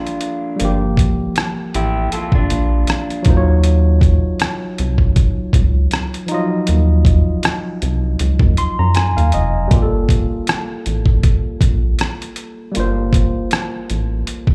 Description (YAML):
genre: R&B, neo-soul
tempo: 79 BPM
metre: 4/4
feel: swing 55% on 16ths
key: unclear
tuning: A4 = 437 Hz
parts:
  - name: electric guitar through a small old amp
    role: second line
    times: 0.0-3.2 s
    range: D4 to A4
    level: -25 LUFS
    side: equal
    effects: spring reverb, slapback echo
  - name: barky tine electric piano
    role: accompaniment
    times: 0.0-14.5 s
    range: F3 to C6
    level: -24 LUFS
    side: equal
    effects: slapback echo
  - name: boom bap sampler-style drum kit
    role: drums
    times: 0.1-14.5 s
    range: hi-hat, kick drum, rim click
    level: -18 LUFS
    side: equal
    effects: none
  - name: rubbery square bass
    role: bass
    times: 0.6-14.2 s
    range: F1 to Gb2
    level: -18 LUFS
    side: equal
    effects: none
room: little or no reverb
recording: live gig heard through the venue's PA, club reverb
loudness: -16 LUFS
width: mono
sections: 0.0-14.5 A section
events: tine electric piano fill 8.2-9.7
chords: 0.0 Gm9; 3.3 Ebm9; 9.7 Gm9